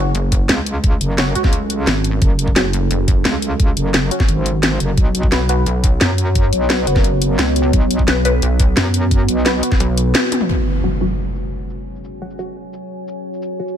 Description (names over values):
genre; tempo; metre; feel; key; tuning
dark technical drum and bass; 174 BPM; 4/4; straight; F# minor; A4 = 441 Hz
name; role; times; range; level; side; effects
deep dark ambient pad; sustained chords; 0.0-13.8 s; B3 to G#5; -23 LUFS; equal; chorus, built-in reverb, sidechain pumping
filtered dub chord stab; stabs; 0.0-13.7 s; F#3 to B4; -24 LUFS; left 1 dB; phaser, wide subtle chorus, ping-pong delay
pulsing pluck wobble bass; bass; 0.0-3.2, 5.3-10.1 s; F#1 to C#2; -17 LUFS; equal; chorus
drum and bass drum kit; drums; 0.1-13.8 s; hi-hat, shaker, snare drum, toms; -19 LUFS; left 1 dB; low-pass filter on hats, low-pass filter on snare, low-pass filter on toms, low-pass filter on perc, low-pass filter on room
electronic kick drum; drums; 0.3-9.8 s; none; -15 LUFS; equal; none
metallic wobble bass; bass; 0.5-9.6 s; F#1 to F#2; -18 LUFS; equal; chorus, overdrive
impact; sound effects; 10.5-11.9 s; none; -22 LUFS; equal; none
room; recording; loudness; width
little or no reverb; none; -14 LUFS; side -9 dB against mid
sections
0.0-10.5 A section; 10.5-13.8 B section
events
band accent 10.1; drum fill 10.3; impact 10.5-11.9; filter sweep on drum 10.5-13.8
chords
0.0 F#m; 5.0 B5; 10.5 F#5